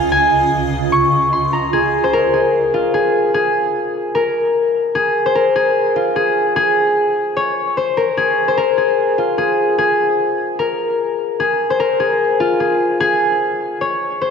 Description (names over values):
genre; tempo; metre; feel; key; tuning
hip hop; 149 BPM; 4/4; half-time; unclear; A4 = 440 Hz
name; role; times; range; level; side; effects
concert harp; melody; 0.0-14.3 s; F4 to Db6; -14 LUFS; left 2 dB; low-pass filter, diffuse ambient delay
granular cloud pad; sustained chords; 0.0-1.7 s; Db2 to Eb5; -20 LUFS; right 3 dB; built-in reverb, lush chorus
room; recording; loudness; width
wet lush hall reverb, RT60 2.8 s; dreamy mix soaked in reverb; -14 LUFS; side -6 dB against mid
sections
0.0-1.7 A section; 1.7-14.3 B section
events
none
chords
0.0 Dbadd9; 1.7 N.C.